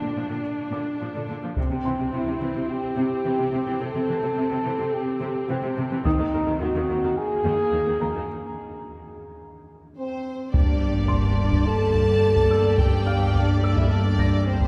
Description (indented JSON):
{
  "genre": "cinematic, hybrid orchestral and electronic film score",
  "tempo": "107 BPM",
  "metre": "4/4",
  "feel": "straight",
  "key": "G minor",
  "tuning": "A4 = 440 Hz",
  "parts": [
    { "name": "rich symphonic viola section", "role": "accompaniment", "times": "0.0-14.7 s", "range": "C3 to G4", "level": "-34 LUFS", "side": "equal", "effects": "none" },
    { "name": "warm French horn section", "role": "sustained chords", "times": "0.0-14.7 s", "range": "C4 to A4", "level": "-28 LUFS", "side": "equal", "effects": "none" },
    { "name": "rich symphonic cello section", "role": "bass", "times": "0.0-14.7 s", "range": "Eb2 to C3", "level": "-30 LUFS", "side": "equal", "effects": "none" },
    { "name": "felt-muted upright piano", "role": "texture", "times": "0.0-14.7 s", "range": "D5 to Bb6", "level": "-40 LUFS", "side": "equal", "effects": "none" },
    { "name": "solo taiko drums", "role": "drums", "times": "1.6-2.6, 6.1-7.1, 10.5-14.7 s", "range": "none", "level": "-28 LUFS", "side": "equal", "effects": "none" },
    { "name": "clear symphonic violin section", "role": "second line", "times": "10.0-14.7 s", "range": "C5 to A5", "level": "-36 LUFS", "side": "equal", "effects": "none" },
    { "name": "warm symphonic violin section", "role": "melody", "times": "10.5-14.7 s", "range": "D5", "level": "-38 LUFS", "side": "equal", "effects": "none" },
    { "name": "rich symphonic double bass section", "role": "bass", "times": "10.5-14.7 s", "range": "G1", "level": "-29 LUFS", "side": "equal", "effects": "none" },
    { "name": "sub drop", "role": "sound effects", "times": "10.7-12.8 s", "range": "none", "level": "-34 LUFS", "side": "equal", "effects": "none" }
  ],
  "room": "wet cathedral reverb, RT60 4.9 s",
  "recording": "recorded in a church or concert hall",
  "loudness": "-23 LUFS",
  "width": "mono",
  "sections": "0.0-10.5 A section; 10.5-14.7 B section",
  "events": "break 8.3-10.5; impact 10.5-12.8",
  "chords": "0.0 Bb; 1.6 C; 6.1 Ebm; 10.5 Gm",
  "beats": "0.45 1.01 | 1.57 2.13 2.69 3.25 | 3.81 4.37 4.93 5.49 | 6.05 6.61 7.17 7.74 | 8.29 8.86 9.42 9.98 | 10.54 11.10 11.66 12.22 | 12.78 13.34 13.90 14.46"
}